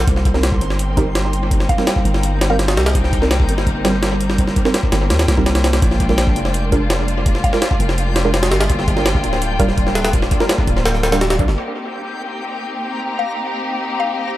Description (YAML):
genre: drum and bass, jungle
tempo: 167 BPM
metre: 4/4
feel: straight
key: C minor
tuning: A4 = 440 Hz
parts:
  - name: long sustained 808-style bass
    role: bass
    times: 0.0-11.6 s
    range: D1 to Eb2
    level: -19 LUFS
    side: equal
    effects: tube saturation
  - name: backwards swelling texture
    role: texture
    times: 0.0-14.4 s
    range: G5 to Bb5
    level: -29 LUFS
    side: left 2 dB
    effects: built-in reverb
  - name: rich studio string section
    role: sustained chords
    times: 0.1-14.4 s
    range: G3 to G4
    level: -24 LUFS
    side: left 1 dB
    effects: vintage 12-bit sampler grit
  - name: jungle sampler-style drum kit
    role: drums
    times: 0.1-11.6 s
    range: hi-hat, kick drum, snare drum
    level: -18 LUFS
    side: equal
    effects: dub echo
  - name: filtered dub chord stab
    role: stabs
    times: 0.3-11.2 s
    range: G3 to Bb4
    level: -24 LUFS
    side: right 2 dB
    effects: chorus, dub echo
  - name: mallet-like synth pluck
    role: melody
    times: 1.7-3.0, 7.4-7.7, 13.2-14.4 s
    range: F5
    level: -26 LUFS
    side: left 2 dB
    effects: chorus, phaser, dub echo
room: light reverb, digital ambience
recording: echo-heavy mix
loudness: -14 LUFS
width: side -14 dB against mid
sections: 0.0-11.6 A section; 11.6-14.4 B section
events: none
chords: 0.1 Cm7; 5.8 Bb7; 8.7 Gm7; 11.6 Cm7